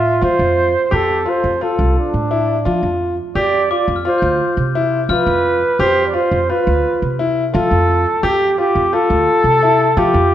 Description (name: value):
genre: contemporary instrumental, chamber music in an uneven meter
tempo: 172 BPM (eighths)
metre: 7/8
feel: straight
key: unclear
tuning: A4 = 440 Hz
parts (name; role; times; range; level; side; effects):
- mellow flugelhorn; melody; 0.0-10.3 s; D4 to D5; -16 LUFS; right 1 dB; none
- clear concert grand piano; arpeggios; 0.0-10.3 s; E4 to E5; -18 LUFS; left 2 dB; none
- upright bass; bass; 0.0-10.3 s; C2 to F3; -20 LUFS; right 1 dB; none
- glockenspiel with soft plastic mallets; texture; 3.7-7.0 s; D6 to G6; -25 LUFS; left 6 dB; none
room: moderate scoring stage reverb, RT60 1.8 s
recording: none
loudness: -13 LUFS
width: side -11 dB against mid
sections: 0.0-10.3 A section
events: none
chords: 0.0 F; 3.4 Gsus4